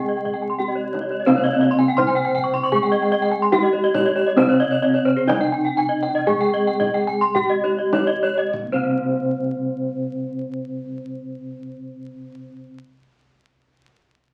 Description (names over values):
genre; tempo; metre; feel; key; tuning
Balinese gamelan; 48-88 BPM; 4/4; straight; C pelog; A4 = 440 Hz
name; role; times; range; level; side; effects
gamelan-type bronze metallophone; melody; 0.0-12.8 s; C4 to C5; -24 LUFS; equal; none
gamelan-type bronze metallophone; accompaniment; 0.0-12.8 s; C3 to Ab3-20c; -33 LUFS; equal; none
gamelan-type bronze metallophone; arpeggios; 0.0-12.8 s; C5 to Db6+20c; -28 LUFS; equal; none
gamelan-type bossed gongs; bass; 0.0-12.7 s; C2 to Db4+20c; -32 LUFS; equal; none
gamelan-type bronze metallophone; arpeggios; 0.1-12.7 s; Ab4-20c to Db6+20c; -26 LUFS; equal; none
kendang; percussion; 0.3-9.1 s; none; -30 LUFS; equal; none
room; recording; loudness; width
moderate studio reverb, RT60 0.6 s; very old 78 rpm record, vinyl crackle; -20 LUFS; mono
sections
0.0-8.5 A section; 8.5-13.5 B section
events
slowing down 1.3-8.5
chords
none